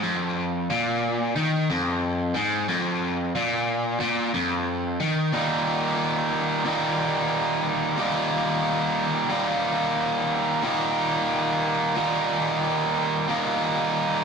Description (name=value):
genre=rock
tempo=90 BPM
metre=4/4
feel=straight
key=Eb major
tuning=A4 = 440 Hz
part: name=biting overdriven guitar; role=solo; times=0.0-14.2 s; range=Eb2 to Eb4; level=-22 LUFS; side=equal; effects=none
room=wet stone room reverb, RT60 1.0 s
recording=rough rehearsal-room recording, tube saturation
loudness=-22 LUFS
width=side -5 dB against mid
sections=0.0-5.3 A section; 5.3-14.2 B section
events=none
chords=0.0 N.C.; 5.3 Eb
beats=| 0.03 0.69 1.35 2.01 | 2.67 3.33 4.00 4.66 | 5.32 5.98 6.64 7.31 | 7.97 8.64 9.30 9.96 | 10.63 11.29 11.96 12.62 | 13.29 13.96